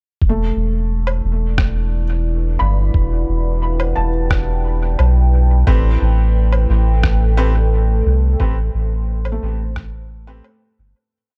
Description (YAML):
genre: ambient dub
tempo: 88 BPM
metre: 4/4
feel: straight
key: E minor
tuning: A4 = 440 Hz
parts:
  - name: deep dark ambient pad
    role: sustained chords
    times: 1.5-11.1 s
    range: A3 to G5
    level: -29 LUFS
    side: equal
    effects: chorus, built-in reverb
  - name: soft dub sub bass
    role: bass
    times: 0.2-10.9 s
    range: E1 to C2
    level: -18 LUFS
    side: equal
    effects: none
  - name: electronic kick drum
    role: drums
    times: 0.2-9.9 s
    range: none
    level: -20 LUFS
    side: equal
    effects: small room ambience
  - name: felt-muted upright piano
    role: arpeggios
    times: 0.3-11.1 s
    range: A3 to B5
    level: -30 LUFS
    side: equal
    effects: dub echo
  - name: electronic woodblock and rim click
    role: drums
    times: 1.1-10.6 s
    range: none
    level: -27 LUFS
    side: equal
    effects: small room ambience, dub echo
  - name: bright upright piano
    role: stabs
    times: 5.7-10.4 s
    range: C4 to B4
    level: -29 LUFS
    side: equal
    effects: dub echo
room: digital ambience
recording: dark, warm production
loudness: -17 LUFS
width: mono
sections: 0.2-11.1 groove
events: fade-out 7.5-11.1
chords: 0.2 Em7; 5.7 Am9